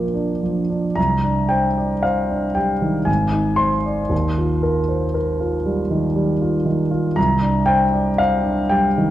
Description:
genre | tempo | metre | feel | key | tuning
classical, impressionist solo piano | 58 BPM | 3/4 | rubato | unclear | A4 = 444 Hz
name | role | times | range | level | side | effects
warm concert grand piano | solo | 0.0-9.1 s | Ab1 to C6 | -17 LUFS | equal | none
room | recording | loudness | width
wet recital hall reverb, RT60 1.4 s | dark, warm production | -17 LUFS | side -13 dB against mid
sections
0.0-9.1 A section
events
none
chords
0.0 Bb69; 1.0 Cmadd9; 3.1 Ab; 4.1 Eb69; 7.2 Csus2

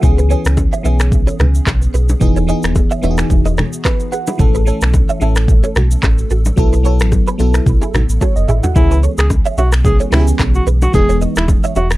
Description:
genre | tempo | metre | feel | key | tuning
afrobeats | 110 BPM | 4/4 | swing 55% on 16ths | C# minor | A4 = 440 Hz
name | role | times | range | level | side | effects
FM electric piano with soft pad layer | accompaniment | 0.0-12.0 s | E3 to F#5 | -20 LUFS | equal | chorus, phaser
sub bass with octave | bass | 0.0-12.0 s | D#1 to C#2 | -14 LUFS | equal | none
afro-pop drum kit | drums | 0.0-12.0 s | finger snaps, handclaps, hi-hat, kick drum, rim click, shaker, toms | -15 LUFS | equal | none
congas and bongos | percussion | 0.0-11.9 s | none | -21 LUFS | left 1 dB | none
direct-recorded clean electric guitar | riff | 0.2-11.9 s | D#4 to E5 | -23 LUFS | right 6 dB | ensemble chorus, tape echo
breathy alto saxophone | melody | 8.8-11.9 s | E4 to G#4 | -18 LUFS | equal | none
room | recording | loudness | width
little or no reverb | dark, warm production | -11 LUFS | side -17 dB against mid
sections
0.0-8.8 A section; 8.8-12.0 B section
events
FM electric piano fill 3.6-4.4; drum fill 8.2-8.8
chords
0.0 C#m7; 2.2 Emaj7; 4.4 A; 6.6 B7sus4; 8.8 C#m7; 10.9 Emaj7

